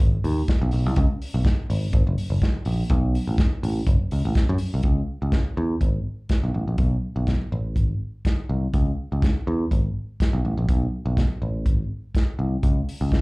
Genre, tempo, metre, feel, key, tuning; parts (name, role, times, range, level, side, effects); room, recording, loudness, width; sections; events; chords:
disco; 123 BPM; 4/4; straight; A4 = 440 Hz
picked electric bass; bass; 0.0-13.2 s; F#1 to F#2; -22 LUFS; equal
warm soul drum kit; drums; 0.0-13.2 s; hi-hat, kick drum, snare drum; -22 LUFS; equal
little or no reverb; live gig heard through the venue's PA, club reverb; -21 LUFS; side -26 dB against mid
0.0-4.8 A section; 4.8-13.2 B section